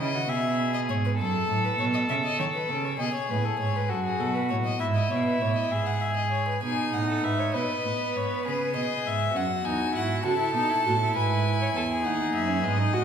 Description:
classical, baroque-style fugue for string quartet; 66 BPM (dotted quarters); 12/8; straight; E major; A4 = 439 Hz
warm violin; melody; 0.0-13.0 s; G#4 to A5; -30 LUFS; left 4 dB
dark violin; second line; 0.0-13.0 s; E4 to C#5; -30 LUFS; left 2 dB
rich cello; bass; 0.0-13.0 s; D#2 to D#3; -28 LUFS; right 3 dB
warm viola; accompaniment; 6.6-13.0 s; B3 to F#4; -30 LUFS; right 3 dB
wet recital hall reverb, RT60 1.5 s; recorded in a church or concert hall; -24 LUFS; side -8 dB against mid
0.0-6.6 A section; 6.6-13.0 B section
0.0 E; 1.2 F#m; 3.0 B7(no3); 4.8 E/G#; 8.5 C#m7; 10.2 N.C.; 12.0 B/D#

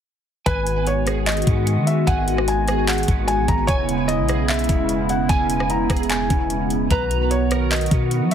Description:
hip hop, atmospheric cloud-rap; 149 BPM; 4/4; half-time; G# minor; A4 = 440 Hz
felt-muted upright piano; melody; 0.5-8.3 s; B4 to A#5; -24 LUFS; equal; digital delay
hollow soft pad; sustained chords; 0.5-8.3 s; C#3 to F#4; -23 LUFS; right 1 dB; chorus, sidechain pumping
electric guitar at the edge of break-up; arpeggios; 0.5-8.3 s; B3 to A#5; -29 LUFS; right 9 dB; ensemble chorus, digital delay
soft 808-style bass; bass; 0.5-8.3 s; E1 to F#3; -23 LUFS; equal
trap drum kit; drums; 0.5-8.3 s; handclaps, hi-hat, kick drum, rim click; -22 LUFS; equal
digital ambience; heavily compressed radio sound; -17 LUFS; side -8 dB against mid
0.5-8.3 A section
0.5 G#m7; 3.7 E6; 6.9 Bmaj7

